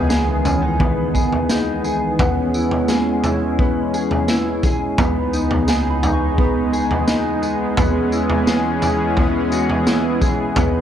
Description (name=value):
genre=dream pop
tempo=86 BPM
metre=4/4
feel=straight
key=C# minor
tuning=A4 = 442 Hz
part: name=warm analog pad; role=sustained chords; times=0.0-10.8 s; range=C#2 to G#4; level=-21 LUFS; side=right 1 dB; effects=chorus
part: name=mellow electric guitar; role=arpeggios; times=0.0-10.8 s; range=B3 to G#4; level=-21 LUFS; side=left 1 dB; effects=ensemble chorus, analog delay
part: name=soft synth bell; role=texture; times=0.0-10.0 s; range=F#5 to C#6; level=-33 LUFS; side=right 3 dB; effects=chorus, phaser, analog delay
part: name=raw garage drum kit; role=drums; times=0.1-10.7 s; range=kick drum, snare drum, tambourine, toms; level=-20 LUFS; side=equal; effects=none
room=light reverb, small room reverb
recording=dark, warm production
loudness=-16 LUFS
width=side -9 dB against mid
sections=0.0-10.8 A section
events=none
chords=0.0 Emaj7/C#; 2.2 C#m7; 5.0 Emaj7/C#; 7.8 C#m7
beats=0.10 0.80 1.50 | 2.19 2.89 3.59 4.29 | 4.98 5.68 6.38 7.08 | 7.77 8.47 9.17 9.87 | 10.56